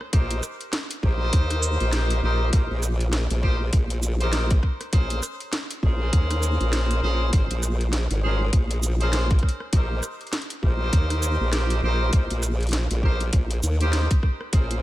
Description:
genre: glitch hop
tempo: 100 BPM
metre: 4/4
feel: swing 59% on 16ths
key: unclear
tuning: A4 = 440 Hz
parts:
  - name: drum and bass drum kit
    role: drums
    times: 0.0-14.8 s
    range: hi-hat, rim click, shaker, snare drum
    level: -30 LUFS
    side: equal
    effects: none
  - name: warm horn section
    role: stabs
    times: 0.1-14.8 s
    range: Db4 to C5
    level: -30 LUFS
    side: equal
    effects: sidechain pumping, diffuse ambient delay
  - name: formant-sweep wobble bass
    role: bass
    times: 0.1-14.8 s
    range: Ab1 to Eb2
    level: -23 LUFS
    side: equal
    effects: chorus
  - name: electronic kick drum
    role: drums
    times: 0.1-14.7 s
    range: none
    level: -19 LUFS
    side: equal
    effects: none
room: light reverb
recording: none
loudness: -21 LUFS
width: side -16 dB against mid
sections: 0.0-14.8 A section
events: none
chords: 0.1 Cm7/Bb; 4.9 Bbm9; 9.7 Cm7/Bb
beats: | 0.13 0.73 1.33 1.93 | 2.53 3.13 3.73 4.33 | 4.93 5.53 6.13 6.73 | 7.33 7.93 8.53 9.13 | 9.73 10.33 10.93 11.53 | 12.13 12.73 13.33 13.93 | 14.53

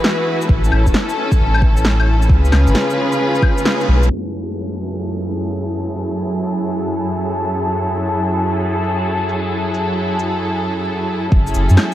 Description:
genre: future garage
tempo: 133 BPM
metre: 4/4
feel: swing 66% on 16ths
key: F# minor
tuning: A4 = 440 Hz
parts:
  - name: rich studio string section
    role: sustained chords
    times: 0.0-11.9 s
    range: F#2 to B4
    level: -18 LUFS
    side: equal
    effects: vintage 12-bit sampler grit, sidechain pumping
  - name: electronic snare drum, shaker, claves and cabasa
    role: drums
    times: 0.0-11.9 s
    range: none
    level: -22 LUFS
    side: equal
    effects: none
  - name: soft dub sub bass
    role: bass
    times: 0.5-4.1, 11.3-11.8 s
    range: E1 to F#2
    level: -13 LUFS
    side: equal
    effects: sidechain pumping
  - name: electronic kick drum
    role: drums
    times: 0.5-3.5, 11.3-11.4 s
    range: none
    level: -15 LUFS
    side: equal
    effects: none
room: wet huge ambient reverb, RT60 9.1 s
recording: dreamy mix soaked in reverb, vinyl crackle, low-pass filter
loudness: -15 LUFS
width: side -13 dB against mid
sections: 0.0-4.1 A section; 4.1-11.3 B section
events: band accent 3.7; filter sweep 4.1-11.3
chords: 0.5 A; 2.3 C#7; 4.1 F#m7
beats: 0.04 | 0.49 0.94 1.40 1.85 | 2.30 2.75 3.20 3.65 | 4.10 4.55 5.00 5.46 | 5.91 6.36 6.81 7.26 | 7.71 8.16 8.61 9.06 | 9.52 9.97 10.42 10.87 | 11.32 11.77

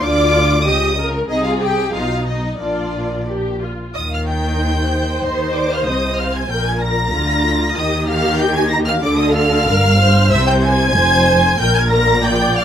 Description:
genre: quick classical-period movement for string orchestra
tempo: 94 BPM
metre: 2/4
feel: straight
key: Eb major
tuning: A4 = 441 Hz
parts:
  - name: warm symphonic violin section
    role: melody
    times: 0.0-12.6 s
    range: D5 to Bb6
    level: -20 LUFS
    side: left 2 dB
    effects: none
  - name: warm symphonic violin section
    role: second line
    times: 0.0-12.6 s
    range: D4 to Bb5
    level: -21 LUFS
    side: equal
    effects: none
  - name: warm symphonic viola section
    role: accompaniment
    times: 0.0-12.6 s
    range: D#4 to D5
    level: -21 LUFS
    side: equal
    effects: none
  - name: dark studio double bass section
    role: bass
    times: 0.0-12.6 s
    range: F1 to Eb2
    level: -20 LUFS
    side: equal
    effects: none
  - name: warm symphonic cello section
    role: bass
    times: 0.0-12.6 s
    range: F2 to Eb3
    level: -20 LUFS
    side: right 1 dB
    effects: none
room: light reverb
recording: none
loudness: -14 LUFS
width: side -9 dB against mid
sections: 0.0-4.0 A section; 4.0-12.6 B section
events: none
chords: 0.0 Dm; 0.7 Eb7/Db; 1.3 Ab/C; 1.9 B; 2.6 Bb; 4.0 Eb; 5.2 Cmadd11; 6.5 Bb; 7.8 Eb; 9.0 D5; 9.7 Gm; 10.3 Caug; 11.0 Fm; 11.6 Gm/Bb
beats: | 0.03 0.67 | 1.30 1.95 | 2.62 3.29 | 3.95 4.60 | 5.24 5.87 | 6.50 7.14 | 7.77 8.41 | 9.04 9.68 | 10.32 10.95 | 11.59 12.24

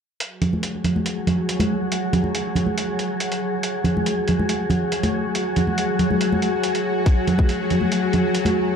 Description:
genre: deep dubstep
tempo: 140 BPM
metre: 4/4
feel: half-time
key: unclear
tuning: A4 = 440 Hz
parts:
  - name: bowed-like drone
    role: sustained chords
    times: 0.7-8.8 s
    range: F#3 to F#4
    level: -24 LUFS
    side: left 2 dB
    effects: built-in reverb, phaser
  - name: electronic hi-hat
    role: drums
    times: 0.2-8.5 s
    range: none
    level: -30 LUFS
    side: right 1 dB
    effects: overdrive, small room ambience
  - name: wind-like tuned noise texture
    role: texture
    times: 0.6-8.8 s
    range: G#4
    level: -28 LUFS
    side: left 1 dB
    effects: built-in reverb
  - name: congas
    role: percussion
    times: 0.4-8.5 s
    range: none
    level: -22 LUFS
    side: right 2 dB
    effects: dub echo
  - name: electronic kick drum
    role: drums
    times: 7.1-7.5 s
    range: none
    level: -17 LUFS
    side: left 1 dB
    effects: small room ambience
room: light reverb, digital ambience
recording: dark, warm production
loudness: -19 LUFS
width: side -7 dB against mid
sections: 0.2-8.8 A section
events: none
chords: 0.2 F#sus2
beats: | 0.20 0.63 1.06 1.49 | 1.92 2.35 2.78 3.21 | 3.63 4.06 4.49 4.92 | 5.35 5.78 6.21 6.63 | 7.06 7.49 7.92 8.35

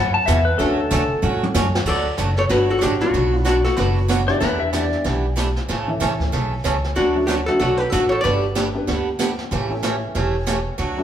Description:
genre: country, western swing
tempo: 188 BPM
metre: 4/4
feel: swing 61% on 8ths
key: D major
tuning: A4 = 440 Hz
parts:
  - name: pedal steel guitar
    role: second line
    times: 0.0-1.4, 4.3-5.0 s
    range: A4 to A5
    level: -22 LUFS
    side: left 2 dB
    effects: none
  - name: picked swing-style acoustic guitar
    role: accompaniment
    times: 0.0-11.0 s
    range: B2 to A4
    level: -24 LUFS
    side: right 4 dB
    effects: none
  - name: upright bass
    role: bass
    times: 0.0-11.0 s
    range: E1 to A2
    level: -23 LUFS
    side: equal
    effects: none
  - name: jazz brush drum kit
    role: drums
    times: 0.3-11.0 s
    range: brushed snare drum, crash cymbal, hi-hat, kick drum, snare drum, toms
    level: -27 LUFS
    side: equal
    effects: none
  - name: warm upright piano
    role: accompaniment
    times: 0.6-11.0 s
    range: E3 to B4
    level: -27 LUFS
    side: left 2 dB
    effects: none
  - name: archtop guitar, miked and amplified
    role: melody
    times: 1.9-4.3, 7.0-8.8 s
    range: D4 to D5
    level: -20 LUFS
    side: left 1 dB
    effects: none
room: wet large studio reverb, RT60 1.5 s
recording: band playing live in one room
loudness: -17 LUFS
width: side -10 dB against mid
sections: 0.0-1.9 A section; 1.9-11.0 B section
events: pedal steel guitar solo 0.0-1.9; drum fill 1.2-1.9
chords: 0.0 Aadd9; 0.6 Dmaj7; 1.9 D; 3.1 Bm; 4.4 Em7; 5.7 A; 7.0 D; 8.2 G; 9.5 A7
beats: 0.27 | 0.59 0.90 1.22 1.54 | 1.86 2.18 2.50 2.81 | 3.13 3.45 3.77 4.09 | 4.41 4.73 5.04 5.36 | 5.68 6.00 6.32 6.64 | 6.96 7.28 7.60 7.91 | 8.23 8.55 8.87 9.19 | 9.51 9.83 10.14 10.46 | 10.78

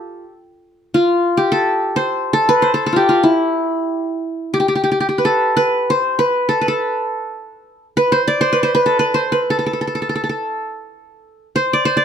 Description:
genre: Turkish makam ensemble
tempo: free time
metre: none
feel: none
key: A makam nihavent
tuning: A4 = 440 Hz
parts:
  - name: qanun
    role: solo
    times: 0.0-12.0 s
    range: E4 to D5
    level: -15 LUFS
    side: equal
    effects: none
room: light reverb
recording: close, detailed microphones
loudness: -15 LUFS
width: side -8 dB against mid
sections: 0.0-12.0 A section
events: none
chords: none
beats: free time

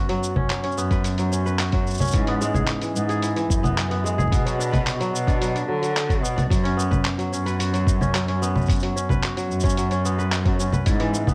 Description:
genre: folktronica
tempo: 110 BPM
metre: 4/4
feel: straight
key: unclear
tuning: A4 = 441 Hz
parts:
  - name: kora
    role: arpeggios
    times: 0.0-11.3 s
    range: E3 to D5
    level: -28 LUFS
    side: equal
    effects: digital delay
  - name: rich cello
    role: bass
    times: 0.0-11.3 s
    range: F#2 to D3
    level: -27 LUFS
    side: equal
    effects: none
  - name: lo-fi sampler-style drum kit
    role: drums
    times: 0.1-11.3 s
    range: congas, handclaps, hi-hat, shaker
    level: -29 LUFS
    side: equal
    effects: small room ambience
  - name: electronic kick drum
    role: drums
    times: 0.4-11.3 s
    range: none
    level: -26 LUFS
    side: equal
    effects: small room ambience
room: little or no reverb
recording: none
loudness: -22 LUFS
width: mono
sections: 0.0-11.3 A section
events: none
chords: 0.0 F#sus4; 2.1 E/G#; 4.3 Bm; 6.5 F#sus4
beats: 0.50 1.05 1.59 | 2.14 2.69 3.23 3.78 | 4.32 4.87 5.41 5.96 | 6.50 7.05 7.59 8.14 | 8.69 9.23 9.78 10.32 | 10.87

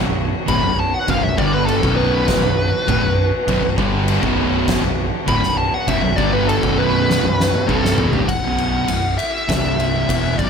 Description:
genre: stoner and doom metal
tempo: 100 BPM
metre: 4/4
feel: straight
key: B minor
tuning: A4 = 440 Hz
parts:
  - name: bright tonewheel organ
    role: sustained chords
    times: 0.0-8.2 s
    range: B3 to C#5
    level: -31 LUFS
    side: equal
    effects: none
  - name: distorted electric guitar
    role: riff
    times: 0.0-8.3 s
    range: B1 to G3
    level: -25 LUFS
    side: equal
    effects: overdrive
  - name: thick fuzz guitar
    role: riff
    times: 0.0-10.5 s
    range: B1 to G3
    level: -24 LUFS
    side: left 11 dB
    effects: distortion
  - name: thick fuzz guitar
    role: riff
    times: 0.0-10.5 s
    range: B1 to G3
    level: -23 LUFS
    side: right 9 dB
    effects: distortion
  - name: fingered electric bass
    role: bass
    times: 0.0-10.5 s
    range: B0 to G1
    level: -24 LUFS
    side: equal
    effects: tube saturation
  - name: fuzz lead guitar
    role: melody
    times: 0.5-10.5 s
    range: A4 to B5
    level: -21 LUFS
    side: equal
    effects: wah, distortion, tape echo
  - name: oversized low-tuned drum kit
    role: drums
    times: 0.5-10.5 s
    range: crash cymbal, kick drum, ride cymbal, snare drum, toms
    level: -22 LUFS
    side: left 1 dB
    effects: none
room: small room ambience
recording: none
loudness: -15 LUFS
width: side -6 dB against mid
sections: 0.0-8.3 A section; 8.3-10.5 B section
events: lead electric guitar solo 0.0-8.3; drum fill 7.1-8.3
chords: 0.0 Bm; 8.3 B5; 9.5 C5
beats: 0.49 | 1.09 1.69 2.29 2.89 | 3.49 4.09 4.68 5.28 | 5.88 6.48 7.08 7.68 | 8.28 8.88 9.48 10.08

